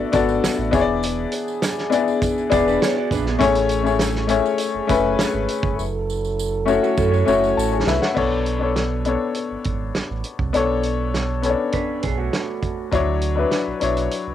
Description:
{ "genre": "lush 1970s-style soul", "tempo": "101 BPM", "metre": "4/4", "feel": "straight", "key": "B dorian", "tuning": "A4 = 440 Hz", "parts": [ { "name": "clear grand piano", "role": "accompaniment", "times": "0.0-14.3 s", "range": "F#3 to A5", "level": "-20 LUFS", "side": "left 5 dB", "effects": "cassette tape" }, { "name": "mellow French horn section", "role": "sustained chords", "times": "0.0-8.1 s", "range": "E3 to A4", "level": "-28 LUFS", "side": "right 3 dB", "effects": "cassette tape" }, { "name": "sub bass with octave", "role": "bass", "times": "0.0-14.3 s", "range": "E1 to F#2", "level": "-25 LUFS", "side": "right 2 dB", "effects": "transformer saturation" }, { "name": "warm soul drum kit", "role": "drums", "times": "0.1-14.3 s", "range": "crash cymbal, hi-hat, kick drum, snare drum", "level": "-25 LUFS", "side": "right 3 dB", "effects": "cassette tape" }, { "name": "tambourine", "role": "percussion", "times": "0.1-8.0 s", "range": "none", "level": "-38 LUFS", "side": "right 14 dB", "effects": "none" }, { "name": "electric guitar through a small old amp", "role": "riff", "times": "2.5-8.0, 11.7-12.9 s", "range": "A3 to D5", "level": "-26 LUFS", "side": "right 10 dB", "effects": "cassette tape" } ], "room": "light reverb", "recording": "home recording on cassette", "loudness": "-18 LUFS", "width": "side -10 dB against mid", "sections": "0.0-8.2 A section; 8.2-14.3 B section", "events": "drum fill 5.8-8.2; grand piano fill 7.3-8.2", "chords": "0.0 Bm7; 0.7 E7; 3.4 Amaj7; 5.8 F#m7; 8.2 Bm9; 12.9 Dmaj9", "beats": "0.43 | 1.03 1.62 2.22 2.81 | 3.41 4.00 4.59 5.19 | 5.78 6.38 6.97 7.57 | 8.16 8.76 9.35 9.95 | 10.54 11.14 11.74 12.33 | 12.93 13.52 14.12" }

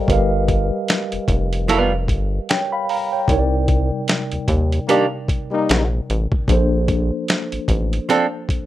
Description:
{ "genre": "R&B, neo-soul", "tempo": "75 BPM", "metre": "4/4", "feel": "swing 57% on 16ths", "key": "unclear", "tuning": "A4 = 440 Hz", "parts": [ { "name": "mellow tine electric piano", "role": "accompaniment", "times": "0.0-8.7 s", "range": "C3 to C6", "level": "-23 LUFS", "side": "equal", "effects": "medium stereo tremolo" }, { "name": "rubbery square bass", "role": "bass", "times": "0.1-8.0 s", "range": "F1 to Eb2", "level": "-19 LUFS", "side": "equal", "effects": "none" }, { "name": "boom bap sampler-style drum kit", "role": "drums", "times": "0.1-8.7 s", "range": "finger snaps, hi-hat, kick drum, snare drum", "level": "-20 LUFS", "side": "equal", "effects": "none" }, { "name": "archtop guitar, miked and amplified", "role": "second line", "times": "1.7-8.3 s", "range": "Eb3 to A#4", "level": "-16 LUFS", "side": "right 4 dB", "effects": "none" }, { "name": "brilliant trombone section", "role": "stabs", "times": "4.9-5.8 s", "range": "G3 to Eb4", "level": "-20 LUFS", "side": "left 4 dB", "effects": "none" } ], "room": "light reverb", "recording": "rough home demo mix", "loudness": "-17 LUFS", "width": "side -14 dB against mid", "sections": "0.0-8.7 A section", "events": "band accent 3.3-6.5", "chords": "0.1 G7alt; 3.3 Cm9; 6.5 Bbmaj9", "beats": "| 0.08 0.88 1.68 2.48 | 3.28 4.08 4.88 5.68 | 6.48 7.28 8.08" }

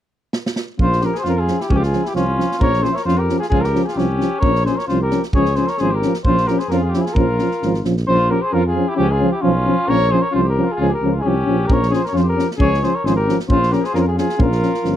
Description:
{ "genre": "balkan folk, Balkan brass band", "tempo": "132 BPM", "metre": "2/4", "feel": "swing 53% on 16ths", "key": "unclear", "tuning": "A4 = 440 Hz", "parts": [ { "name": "natural country drum kit", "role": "percussion", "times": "0.3-8.0, 11.7-14.9 s", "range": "kick drum, snare drum", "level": "-22 LUFS", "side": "right 1 dB", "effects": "none" }, { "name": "warm flugelhorn", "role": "melody", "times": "0.8-15.0 s", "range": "F4 to E5", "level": "-21 LUFS", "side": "equal", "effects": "none" }, { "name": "mellow trumpet", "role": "second line", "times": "0.8-15.0 s", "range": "Db4 to C5", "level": "-27 LUFS", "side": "left 3 dB", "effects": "none" }, { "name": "mellow euphonium", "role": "accompaniment", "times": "0.8-14.9 s", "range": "Db4", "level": "-22 LUFS", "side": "left 7 dB", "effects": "none" }, { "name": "mellow euphonium", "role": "accompaniment", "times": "0.8-14.9 s", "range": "F3", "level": "-23 LUFS", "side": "right 6 dB", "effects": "none" }, { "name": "mellow tuba", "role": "bass", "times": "0.8-15.0 s", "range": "G1 to F2", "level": "-20 LUFS", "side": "equal", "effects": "none" } ], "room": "small room ambience", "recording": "dry, close 1970s-style studio recording", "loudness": "-15 LUFS", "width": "side -11 dB against mid", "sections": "0.8-8.1 A section; 8.1-15.0 A section", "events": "drum fill 0.3-0.8", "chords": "0.0 N.C.; 0.8 Bbm; 1.7 Db; 2.6 Bbm; 3.5 Db; 4.4 Bbm; 5.3 Db; 6.2 Bbm; 9.0 Db; 9.9 Bbm; 12.6 Db; 13.5 Bbm", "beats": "0.34 | 0.79 1.24 | 1.70 2.15 | 2.61 3.06 | 3.52 3.97 | 4.43 4.88 | 5.34 5.79 | 6.25 6.70 | 7.16 7.61 | 8.07 8.52 | 8.97 9.43 | 9.88 10.34 | 10.79 11.24 | 11.69 12.15 | 12.60 13.05 | 13.50 13.95 | 14.40 14.85" }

